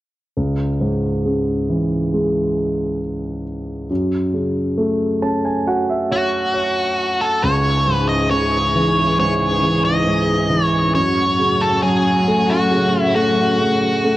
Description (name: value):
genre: pop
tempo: 68 BPM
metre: 4/4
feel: straight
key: C# minor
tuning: A4 = 440 Hz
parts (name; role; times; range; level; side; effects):
- warm concert grand piano; accompaniment; 0.4-14.2 s; C#2 to A5; -18 LUFS; equal; none
- octave-fuzz lead guitar; melody; 6.1-14.2 s; F#4 to D#5; -18 LUFS; equal; distortion
- warm studio string section; sustained chords; 7.4-14.2 s; A2 to G#4; -23 LUFS; left 1 dB; none
room: moderate plate reverb, RT60 3.4 s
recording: worn, warbling old tape, cassette tape, warbly pitch drift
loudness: -16 LUFS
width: side -15 dB against mid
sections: 0.4-7.4 A section; 7.4-14.2 B section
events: grand piano fill 4.8-7.4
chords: 0.4 C#m; 3.9 F#m; 7.4 C#madd9; 11.0 F#m